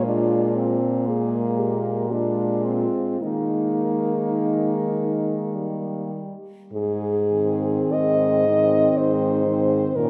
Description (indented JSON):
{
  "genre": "classical, lyrical piece for horn quartet",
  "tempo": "47-62 BPM",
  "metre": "3/4",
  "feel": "rubato",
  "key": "Ab major",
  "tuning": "A4 = 441 Hz",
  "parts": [
    { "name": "mellow French horn", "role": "melody", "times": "0.0-10.1 s", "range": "Eb4 to Eb5", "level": "-26 LUFS", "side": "equal", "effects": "none" },
    { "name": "clear French horn", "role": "second line", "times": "0.0-10.1 s", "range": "Bb3 to D4", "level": "-29 LUFS", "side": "equal", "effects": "none" },
    { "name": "mellow French horn", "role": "accompaniment", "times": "0.0-10.1 s", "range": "Eb3 to Ab3", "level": "-30 LUFS", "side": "equal", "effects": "none" },
    { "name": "warm French horn", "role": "bass", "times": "0.0-10.1 s", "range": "Ab2 to Eb3", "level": "-28 LUFS", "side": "equal", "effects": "none" }
  ],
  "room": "moderate church reverb, RT60 2.9 s",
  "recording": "none",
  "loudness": "-22 LUFS",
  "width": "mono",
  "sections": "0.0-6.7 A section; 6.7-10.1 B section",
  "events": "none",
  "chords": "0.0 Bb7(no3); 3.2 Ebsus4; 5.6 Eb; 6.7 Ab"
}